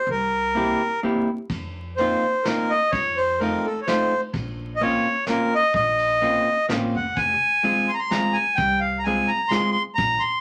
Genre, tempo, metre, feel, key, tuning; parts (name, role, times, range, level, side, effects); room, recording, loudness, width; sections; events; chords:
musette waltz; 127 BPM; 3/4; straight; Bb harmonic minor, F minor from 7.2 s; A4 = 438 Hz
accordion; melody; 0.0-10.4 s; A4 to C6; -23 LUFS; equal
upright bass; bass; 0.1-10.1 s; F1 to F2; -35 LUFS; equal
hollow-body jazz guitar; accompaniment; 0.5-9.8 s; Ab3 to Ab4; -27 LUFS; equal
vintage brush drum kit; drums; 1.5-10.1 s; hi-hat, kick drum, ride cymbal, snare drum; -35 LUFS; equal
wet club reverb, RT60 0.5 s; vinyl crackle; -22 LUFS; mono
0.0-7.2 A section; 7.2-10.4 B section
0.0 C7; 1.5 F7sus4; 2.9 F7; 4.3 Bbmadd9; 7.2 Fm